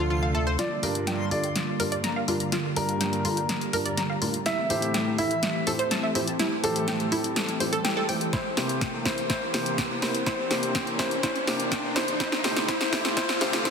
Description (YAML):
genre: progressive house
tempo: 124 BPM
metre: 4/4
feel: straight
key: G dorian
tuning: A4 = 440 Hz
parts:
  - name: warm grand piano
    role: melody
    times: 0.0-13.7 s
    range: A4 to E5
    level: -31 LUFS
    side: left 1 dB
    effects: sidechain pumping, dub echo
  - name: warm analog pad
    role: sustained chords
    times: 0.0-13.7 s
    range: C3 to G4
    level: -33 LUFS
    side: right 1 dB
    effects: chorus, sidechain pumping
  - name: analog pluck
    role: arpeggios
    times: 0.0-13.7 s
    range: E4 to Bb5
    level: -32 LUFS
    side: right 1 dB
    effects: chorus, sidechain pumping, dub echo
  - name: felt-muted upright piano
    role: stabs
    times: 0.0-13.6 s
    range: G2 to E5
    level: -31 LUFS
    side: equal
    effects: sidechain pumping, dub echo
  - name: round analog bass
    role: bass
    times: 0.0-0.6 s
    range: D2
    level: -27 LUFS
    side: equal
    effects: sidechain pumping
  - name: backwards swelling texture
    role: texture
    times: 0.1-0.6 s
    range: C6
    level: -42 LUFS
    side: left 2 dB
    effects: built-in reverb, sidechain pumping
  - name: deep house drum kit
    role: drums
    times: 0.6-13.7 s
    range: hi-hat, snare drum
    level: -29 LUFS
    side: equal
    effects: none
  - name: riser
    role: sound effects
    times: 3.8-13.7 s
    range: none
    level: -34 LUFS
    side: equal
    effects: none
  - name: electronic kick drum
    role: drums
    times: 8.3-13.7 s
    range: none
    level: -33 LUFS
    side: equal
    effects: none
room: moderate lush hall reverb, RT60 1.7 s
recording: dense, heavily limited modern master, high-pass filter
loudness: -24 LUFS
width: side -6 dB against mid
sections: 0.6-13.7 A section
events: build-up 0.6-13.7; drum fill 0.6-13.7; filter sweep on synth pluck 0.6-13.7; riser 3.8-13.7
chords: 0.0 Dm7; 0.6 Gm7; 4.5 Am7; 8.3 C7; 12.2 Dm7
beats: 0.10 | 0.59 1.07 1.56 2.04 | 2.52 3.01 3.49 3.98 | 4.46 4.94 5.43 5.91 | 6.39 6.88 7.36 7.85 | 8.33 8.81 9.30 9.78 | 10.27 10.75 11.23 11.72 | 12.20 12.69 13.17 13.65